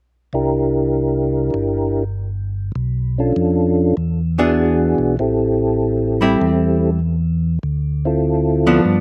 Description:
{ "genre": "jazz", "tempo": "99 BPM", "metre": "4/4", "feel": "swing 67% on 8ths", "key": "unclear", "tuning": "A4 = 440 Hz", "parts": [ { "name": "percussive tonewheel organ", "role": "melody", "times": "0.3-8.8 s", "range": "B3 to Bb4", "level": "-20 LUFS", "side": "equal", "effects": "slow rotary speaker, chorus vibrato" }, { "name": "mellow tonewheel organ", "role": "bass", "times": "0.3-9.0 s", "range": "G1 to G2", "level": "-22 LUFS", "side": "equal", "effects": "slow rotary speaker" }, { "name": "archtop guitar, miked and amplified", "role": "accompaniment", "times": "4.4-9.0 s", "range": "E3 to G#4", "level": "-19 LUFS", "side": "equal", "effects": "slapback echo" } ], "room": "little or no reverb", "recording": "recorded outdoors, with no room sound, faint mains hum", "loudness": "-18 LUFS", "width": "mono", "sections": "0.3-9.0 A section", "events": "none", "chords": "0.3 C7; 2.8 Bm7b5; 4.0 E7; 5.2 Am7; 7.6 Dm7" }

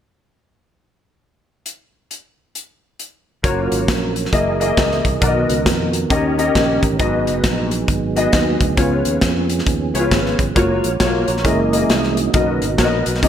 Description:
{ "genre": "uptempo gospel", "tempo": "135 BPM", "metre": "4/4", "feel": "swing 63% on 8ths", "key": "F# major", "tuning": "A4 = 436 Hz", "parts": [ { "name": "modern studio drum kit", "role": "drums", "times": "1.7-13.3 s", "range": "hi-hat, kick drum, snare drum", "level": "-19 LUFS", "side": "equal", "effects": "gated reverb" }, { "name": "warm upright piano", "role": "accompaniment", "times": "3.4-13.3 s", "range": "G#2 to D#5", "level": "-19 LUFS", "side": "left 2 dB", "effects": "ensemble chorus" }, { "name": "percussive tonewheel organ", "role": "sustained chords", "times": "3.4-13.3 s", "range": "D#3 to D#5", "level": "-22 LUFS", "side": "right 4 dB", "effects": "slow rotary speaker, chorus vibrato" }, { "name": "fingered electric bass", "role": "bass", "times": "3.4-13.3 s", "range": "F#1 to E#2", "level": "-23 LUFS", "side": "equal", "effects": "none" } ], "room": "moderate lush hall reverb, RT60 1.7 s, small room ambience", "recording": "bright 1980s-style digital production", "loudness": "-15 LUFS", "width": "side -9 dB against mid", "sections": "1.7-3.4 A section; 3.4-10.6 B section; 10.6-13.3 C section", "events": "tonewheel organ solo 10.6-13.3", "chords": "1.7 N.C.; 3.4 F#maj7; 4.3 F#13; 5.2 Bmaj7; 6.1 D#7; 7.0 G#m7; 8.8 C#7; 10.6 F#maj7; 11.5 F#13; 12.3 Bmaj7" }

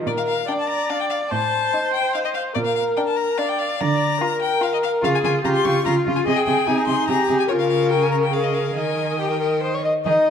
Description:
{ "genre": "quick classical-period movement for string quartet", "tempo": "145 BPM", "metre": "3/4", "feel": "straight", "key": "Bb major", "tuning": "A4 = 440 Hz", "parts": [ { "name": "rich viola", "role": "accompaniment", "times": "0.0-10.3 s", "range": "Eb4 to Eb5", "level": "-22 LUFS", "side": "equal", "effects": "none" }, { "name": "clear violin", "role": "melody", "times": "0.1-10.1 s", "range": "Ab4 to Db6", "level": "-24 LUFS", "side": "left 7 dB", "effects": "none" }, { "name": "rich cello", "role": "bass", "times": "0.1-10.1 s", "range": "A2 to Eb3", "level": "-24 LUFS", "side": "right 4 dB", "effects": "none" }, { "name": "rich violin", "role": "second line", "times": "0.5-10.3 s", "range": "D4 to Eb5", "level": "-24 LUFS", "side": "left 3 dB", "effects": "none" } ], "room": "moderate recital hall reverb, RT60 1.4 s", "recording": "dark, warm production", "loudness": "-18 LUFS", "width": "side -7 dB against mid", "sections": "0.1-10.1 A section", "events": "none", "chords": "0.1 Bb; 1.3 Adim; 2.6 Bb; 3.8 Bb/D; 5.0 Db; 6.3 Ab/C; 7.5 Bbm7/Db; 8.8 Eb" }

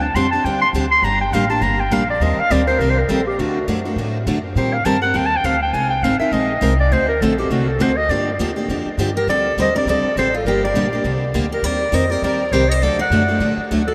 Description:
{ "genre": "acoustic string swing (jazz manouche)", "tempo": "204 BPM", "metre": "4/4", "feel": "swing 58% on 8ths", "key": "unclear", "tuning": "A4 = 440 Hz", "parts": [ { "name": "warm clarinet", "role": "melody", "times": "0.0-13.9 s", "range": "F#4 to C6", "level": "-21 LUFS", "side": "equal", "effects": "none" }, { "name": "picked steel-string acoustic guitar", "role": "accompaniment", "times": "0.0-13.8 s", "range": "D3 to Bb4", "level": "-23 LUFS", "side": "equal", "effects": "none" }, { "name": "upright bass", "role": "bass", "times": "0.0-13.9 s", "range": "G1 to Bb2", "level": "-25 LUFS", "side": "equal", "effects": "none" }, { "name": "picked steel-string acoustic guitar", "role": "second line", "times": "9.2-13.9 s", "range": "F4 to D5", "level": "-27 LUFS", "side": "equal", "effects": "none" } ], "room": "wet huge ambient reverb, RT60 8.7 s", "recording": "in a vast, echoing space", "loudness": "-18 LUFS", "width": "mono", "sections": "0.0-9.3 A section; 9.3-13.9 B section", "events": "clarinet solo 0.0-9.3", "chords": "0.0 D7sus4; 1.0 Gm; 2.2 Eb6; 3.4 D; 4.6 Eb6; 5.7 Abadd9; 6.9 D7; 8.1 Gm7; 9.3 D7sus4; 10.5 Gm; 11.6 Eb6; 12.8 D" }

